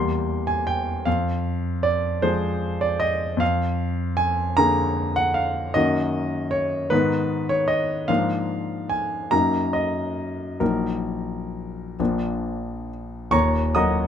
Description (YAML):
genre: classical, romantic character piece for solo piano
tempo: 42-52 BPM (dotted quarters)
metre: 6/8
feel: rubato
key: Eb minor from 3.4 s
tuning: A4 = 440 Hz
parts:
  - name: clear grand piano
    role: solo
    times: 0.0-14.1 s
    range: Eb1 to Eb6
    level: -21 LUFS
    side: equal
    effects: none
room: light reverb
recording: close, detailed microphones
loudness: -21 LUFS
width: side -8 dB against mid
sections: 0.0-13.3 A section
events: none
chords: 0.0 C7/E; 1.1 Fm; 3.4 Bb7/F; 5.8 Ebm/Gb; 6.9 Abm; 8.1 Bb7/Ab; 9.3 Ebm/Gb; 10.6 Ebm/Bb; 12.0 Bb; 13.3 Ebm